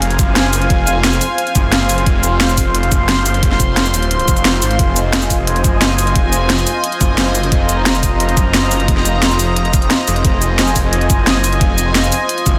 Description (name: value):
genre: dark technical drum and bass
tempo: 176 BPM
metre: 4/4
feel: straight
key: F phrygian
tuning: A4 = 440 Hz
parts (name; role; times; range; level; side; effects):
- sweeping resonant pad; sustained chords; 0.0-12.6 s; F4 to C6; -20 LUFS; equal; chorus, sidechain pumping
- snarling distorted saw bass; bass; 0.0-12.6 s; Eb1 to Ab1; -19 LUFS; equal; distortion, overdrive
- drum and bass drum kit; drums; 0.0-12.5 s; cabasa, hi-hat, snare drum; -20 LUFS; equal; overdrive
- electronic kick drum; drums; 0.2-12.5 s; none; -18 LUFS; equal; overdrive
room: moderate huge ambient reverb, RT60 7.1 s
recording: dreamy mix soaked in reverb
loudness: -14 LUFS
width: mono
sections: 0.0-12.6 A section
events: none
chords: 0.0 Fm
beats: 0.02 0.36 | 0.70 1.04 1.38 1.72 | 2.06 2.41 2.75 3.09 | 3.43 3.77 4.11 4.45 | 4.79 5.13 5.47 5.82 | 6.16 6.50 6.84 7.18 | 7.52 7.86 8.20 8.54 | 8.88 9.22 9.56 9.91 | 10.25 10.59 10.93 11.27 | 11.61 11.95 12.29